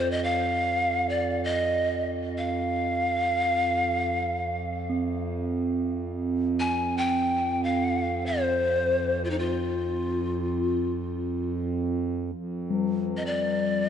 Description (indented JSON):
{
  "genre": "world meditative, free-time meditation music",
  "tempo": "free time",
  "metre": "none",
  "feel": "none",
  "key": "unclear",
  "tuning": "A4 = 440 Hz",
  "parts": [
    { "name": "breathy mellow pan flute", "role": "melody", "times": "0.0-13.9 s", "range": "Eb4 to Ab5", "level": "-26 LUFS", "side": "left 2 dB", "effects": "tape echo" },
    { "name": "hand-pumped harmonium", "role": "drone", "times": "0.0-13.9 s", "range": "F2", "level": "-29 LUFS", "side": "right 3 dB", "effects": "none" },
    { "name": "bronze singing bowl", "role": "texture", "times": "4.9-13.9 s", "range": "G3 to C4", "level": "-32 LUFS", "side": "equal", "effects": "none" }
  ],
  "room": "wet church reverb, RT60 3.0 s",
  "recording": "dark, warm production, nothing above 10.4 kHz",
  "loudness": "-24 LUFS",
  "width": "side -8 dB against mid",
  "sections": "0.0-12.3 A section; 12.3-13.9 A section",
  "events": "none",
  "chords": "none",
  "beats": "free time"
}